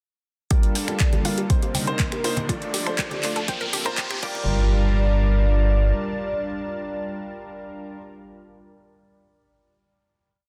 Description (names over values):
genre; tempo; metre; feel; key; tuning
progressive house; 121 BPM; 4/4; straight; G minor; A4 = 441 Hz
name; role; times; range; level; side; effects
warm velvety synth lead; melody; 0.5-8.0 s; Bb4 to D5; -34 LUFS; equal; chorus, tremolo, dub echo
lush unison pad; sustained chords; 0.5-8.0 s; C3 to A5; -35 LUFS; equal; chorus, vintage 12-bit sampler grit, sidechain pumping
analog pluck; arpeggios; 0.5-4.7 s; D4 to G5; -36 LUFS; equal; chorus, sidechain pumping, dub echo
warm grand piano; stabs; 0.5-8.0 s; G3 to D5; -33 LUFS; equal; sidechain pumping, low-pass filter, dub echo
breakbeat sampler-style drum kit; drums; 0.5-4.1 s; hi-hat, snare drum; -39 LUFS; equal; none
electronic kick drum; drums; 0.5-4.3 s; none; -24 LUFS; equal; overdrive
house drum kit; drums; 0.5-4.3 s; crash cymbal, finger snaps, handclaps, hi-hat; -31 LUFS; equal; high-pass filter on hats, high-pass filter on snare, high-pass filter on cymbals
riser and impact; sound effects; 1.9-8.0 s; none; -36 LUFS; equal; none
round analog bass; bass; 0.8-5.9 s; F1 to D2; -23 LUFS; equal; tube saturation, sidechain pumping, high-pass filter
bongos and congas; percussion; 0.8-4.4 s; none; -36 LUFS; equal; sidechain pumping on perc
room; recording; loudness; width
light reverb; dense, heavily limited modern master, high-pass filter; -23 LUFS; mono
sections
0.5-4.5 build; 4.5-8.4 final hit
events
build-up 0.5-4.5; filter sweep on synth arpeggio sound 0.5-4.5; filter sweep on grand piano 0.5-4.5; filter sweep 0.5-4.5; riser 1.9-4.5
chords
0.5 Gm7; 1.5 Cm7; 2.5 Dm; 3.5 Fsus4; 4.2 Gm7